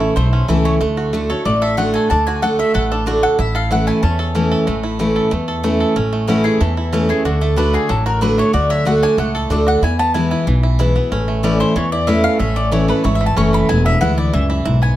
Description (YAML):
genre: bluegrass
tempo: 186 BPM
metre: 4/4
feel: straight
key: A major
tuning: A4 = 439 Hz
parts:
  - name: bluegrass banjo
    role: melody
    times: 0.0-15.0 s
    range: E3 to A4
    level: -24 LUFS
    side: right 5 dB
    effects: slapback echo
  - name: mandolin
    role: melody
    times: 0.0-15.0 s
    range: F#4 to C#6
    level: -21 LUFS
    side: left 2 dB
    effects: none
  - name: picked steel-string acoustic guitar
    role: accompaniment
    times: 0.0-15.0 s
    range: E2 to F#4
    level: -17 LUFS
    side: equal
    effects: none
  - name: upright bass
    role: bass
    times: 0.0-14.9 s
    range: E1 to E2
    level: -18 LUFS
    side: equal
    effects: none
room: moderate studio reverb, RT60 0.8 s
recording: none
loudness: -14 LUFS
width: side -14 dB against mid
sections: 0.0-6.0 A section; 6.0-15.0 B section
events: none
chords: 0.0 A; 0.8 D; 3.4 A; 7.3 D; 9.8 E; 11.1 A; 13.7 E